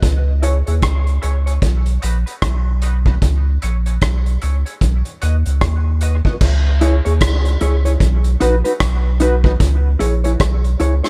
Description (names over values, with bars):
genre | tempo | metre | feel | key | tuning
dub reggae | 75 BPM | 4/4 | swing 60% on 16ths | C# dorian | A4 = 440 Hz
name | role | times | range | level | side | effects
warm sub bass | bass | 0.0-11.0 s | A#1 to D#2 | -18 LUFS | equal | none
vintage drum kit | drums | 0.0-11.1 s | crash cymbal, hi-hat, kick drum, rim click | -22 LUFS | equal | none
mellow electric guitar | accompaniment | 0.4-11.1 s | D#4 to D#5 | -25 LUFS | equal | analog chorus, high-pass filter, low-pass filter, dub echo
room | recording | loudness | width
small room ambience | echo-heavy mix | -16 LUFS | mono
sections
0.0-6.4 A section; 6.4-11.1 B section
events
filter sweep on clean electric guitar 0.0-6.4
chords
0.0 C#m; 1.6 B; 3.2 C#m; 4.8 B; 6.4 C#m; 8.0 B; 9.6 C#m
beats
| 0.03 0.82 1.62 2.42 | 3.22 4.02 4.81 5.61 | 6.41 7.21 8.00 8.80 | 9.60 10.40